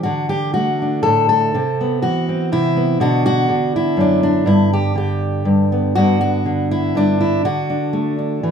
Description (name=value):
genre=folk, solo fingerstyle acoustic guitar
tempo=122 BPM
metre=3/4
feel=rubato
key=unclear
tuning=A4 = 443 Hz
part: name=fingerpicked steel-string acoustic guitar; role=solo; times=0.0-8.5 s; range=F#2 to A4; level=-15 LUFS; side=equal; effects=none
room=moderate large studio reverb, RT60 1.0 s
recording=band playing live in one room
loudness=-15 LUFS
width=side -7 dB against mid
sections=0.0-8.5 A section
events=none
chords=0.0 D; 1.5 Amadd9/C; 3.0 Bm; 4.5 G; 7.5 D